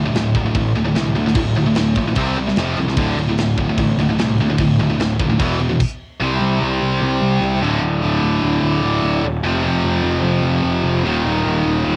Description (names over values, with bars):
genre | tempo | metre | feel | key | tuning
heavy metal | 149 BPM | 4/4 | straight | D phrygian | A4 = 440 Hz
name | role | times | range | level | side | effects
heavy high-gain guitar | riff | 0.0-12.0 s | D2 to C4 | -20 LUFS | equal | distortion, cassette tape
fuzz picked electric bass | bass | 0.0-12.0 s | D1 to D2 | -23 LUFS | equal | overdrive
tight metal drum kit | drums | 0.1-5.9 s | crash cymbal, kick drum, snare drum | -26 LUFS | equal | none
room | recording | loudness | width
light reverb, small room ambience | home recording on cassette | -18 LUFS | mono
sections
0.0-6.2 A section; 6.2-12.0 B section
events
stop 5.8-6.2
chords
0.0 D5; 2.2 C5; 2.6 F5; 3.0 D5; 5.4 E5; 5.8 N.C.; 6.2 C5; 7.6 D5; 9.4 F5; 11.1 Eb5